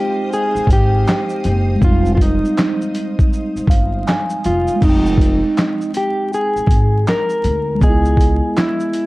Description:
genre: lo-fi hip hop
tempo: 80 BPM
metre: 4/4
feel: swing 63% on 16ths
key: F minor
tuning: A4 = 440 Hz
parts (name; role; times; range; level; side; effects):
- mellow electric guitar; melody; 0.0-9.1 s; Eb4 to Bb4; -19 LUFS; equal; none
- mellow tine electric piano; accompaniment; 0.0-9.1 s; G3 to Ab5; -22 LUFS; right 1 dB; medium stereo tremolo
- string machine, full ensemble; sustained chords; 0.0-4.8 s; C5 to Eb6; -32 LUFS; equal; ensemble chorus
- dusty soul sampler-style drum kit; drums; 0.3-9.1 s; crash cymbal, handclaps, hi-hat, kick drum, shaker, snare drum; -16 LUFS; equal; none
- upright bass; bass; 0.6-8.4 s; F1 to D2; -18 LUFS; equal; none
room: light reverb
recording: dark, warm production, vinyl crackle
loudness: -13 LUFS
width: side -20 dB against mid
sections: 0.0-4.8 A section; 4.8-9.1 B section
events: tine electric piano fill 3.3-4.8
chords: 0.0 Fm7; 4.8 Fm9; 7.8 Dbm9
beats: 0.31 1.06 | 1.81 2.56 3.31 4.06 | 4.81 5.56 6.31 7.06 | 7.81 8.56

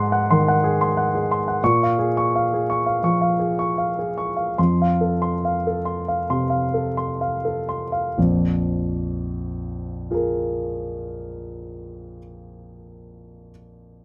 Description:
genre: neoclassical minimalist piano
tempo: 61-91 BPM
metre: 4/4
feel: rubato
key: Bb minor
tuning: A4 = 440 Hz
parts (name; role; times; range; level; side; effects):
- warm grand piano; solo; 0.0-14.0 s; Bb1 to Db6; -22 LUFS; equal; none
room: light reverb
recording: none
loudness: -22 LUFS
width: mono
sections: 0.0-8.2 A section; 8.2-12.0 B section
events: slowing down 0.2-8.2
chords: 0.0 Ab7; 1.6 Bbm7; 4.6 F; 8.2 Bb5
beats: 0.25 0.92 | 1.60 2.30 3.02 3.77 | 4.57 5.41 6.27 7.19 | 8.16 9.13 10.09 11.06

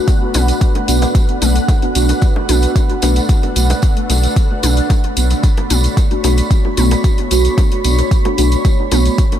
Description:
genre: dub techno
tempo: 112 BPM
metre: 4/4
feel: straight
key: unclear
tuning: A4 = 440 Hz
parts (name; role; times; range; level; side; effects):
- granular cloud pad; sustained chords; 0.0-9.4 s; A3 to B5; -21 LUFS; right 1 dB; built-in reverb, sidechain pumping
- deep mellow chord stab; stabs; 0.0-9.2 s; A3 to F#4; -19 LUFS; equal; chorus, phaser, cassette tape, sidechain pumping, dub echo
- electronic hi-hat; drums; 0.1-9.4 s; none; -25 LUFS; left 4 dB; overdrive
- electronic kick drum; drums; 0.1-9.3 s; none; -13 LUFS; equal; overdrive
- electronic bongos and toms; percussion; 0.1-9.4 s; none; -28 LUFS; left 2 dB; none
- tambourine; percussion; 0.1-9.3 s; none; -25 LUFS; right 2 dB; none
- round analog bass; bass; 0.3-9.1 s; B1; -14 LUFS; equal; tube saturation, sidechain pumping
room: little or no reverb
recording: none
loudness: -12 LUFS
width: side -10 dB against mid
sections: 0.0-9.4 A section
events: none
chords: 0.0 Bm7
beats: | 0.08 0.61 1.15 1.69 | 2.22 2.76 3.29 3.83 | 4.36 4.90 5.44 5.97 | 6.51 7.04 7.58 8.11 | 8.65 9.19

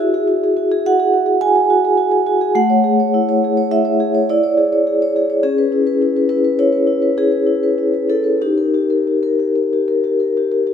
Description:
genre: classical, contemporary piece for solo vibraphone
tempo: 90-108 BPM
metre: 5/4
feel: rubato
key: unclear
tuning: A4 = 440 Hz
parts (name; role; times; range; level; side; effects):
- vibraphone with medium mallets; solo; 0.0-10.7 s; A3 to G#5; -14 LUFS; equal; none
room: wet recital hall reverb, RT60 1.8 s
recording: minimal, uncompressed stereo recording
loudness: -13 LUFS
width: side -8 dB against mid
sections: 0.0-10.7 A section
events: none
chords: 0.0 Eadd9; 2.6 Amaj7; 4.3 E6; 5.4 C#m7; 8.4 D#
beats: 0.28 0.84 1.41 1.98 | 2.56 3.13 3.70 4.27 4.85 | 5.42 5.99 6.57 7.15 7.76 | 8.39 9.06 9.71 10.36

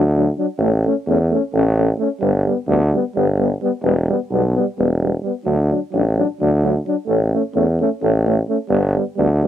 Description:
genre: balkan folk, Balkan brass band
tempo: 259 BPM (eighths)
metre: 7/8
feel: straight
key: D major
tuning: A4 = 440 Hz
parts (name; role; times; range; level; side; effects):
- mellow euphonium; accompaniment; 0.0-9.5 s; F#3 to A3; -23 LUFS; right 9 dB; none
- warm euphonium; accompaniment; 0.0-9.5 s; B3 to D4; -22 LUFS; left 8 dB; none
- clear tuba; bass; 0.0-9.4 s; E1 to E2; -17 LUFS; equal; none
room: little or no reverb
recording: home recording on cassette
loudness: -16 LUFS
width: side -11 dB against mid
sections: 0.0-9.5 A section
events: none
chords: 0.0 D; 0.6 A; 2.2 G; 3.8 Em; 5.5 D; 7.1 A; 8.7 G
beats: 0.13 0.36 | 0.59 0.82 1.05 1.29 1.52 1.75 1.98 | 2.21 2.44 2.67 2.91 3.14 3.37 3.60 | 3.83 4.07 4.30 4.53 4.76 4.99 5.22 | 5.46 5.69 5.92 6.15 6.38 6.61 6.84 | 7.08 7.31 7.54 7.77 8.00 8.23 8.46 | 8.70 8.93 9.16 9.39

